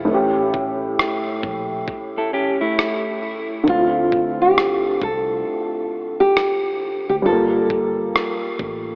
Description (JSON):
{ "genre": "lo-fi hip hop", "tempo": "67 BPM", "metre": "4/4", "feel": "swing 64% on 16ths", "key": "D minor", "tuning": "A4 = 440 Hz", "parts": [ { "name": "nylon-string guitar", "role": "melody", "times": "0.0-9.0 s", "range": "E4 to A4", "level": "-23 LUFS", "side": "equal", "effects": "low-pass filter, analog delay" }, { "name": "dark upright piano", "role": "accompaniment", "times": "0.0-9.0 s", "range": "A2 to A4", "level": "-24 LUFS", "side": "equal", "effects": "cassette tape, low-pass filter" }, { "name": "vintage muted fingered electric bass", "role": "bass", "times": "0.0-9.0 s", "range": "G1 to D2", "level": "-38 LUFS", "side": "equal", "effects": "none" }, { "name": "dusty soul sampler-style drum kit", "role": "drums", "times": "0.5-8.9 s", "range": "kick drum, rim click", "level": "-27 LUFS", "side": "equal", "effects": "none" }, { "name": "semi-hollow electric guitar", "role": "second line", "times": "2.2-3.6 s", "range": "A3 to A4", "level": "-26 LUFS", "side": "equal", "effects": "warbly pitch drift, low-pass filter, analog delay" } ], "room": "wet huge ambient reverb, RT60 4.5 s", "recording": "dreamy mix soaked in reverb, cassette tape, AM radio sound", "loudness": "-20 LUFS", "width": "mono", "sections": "0.0-9.0 A section", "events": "break 0.0-9.0", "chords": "0.1 A7; 3.7 Dm7; 7.3 Gm9" }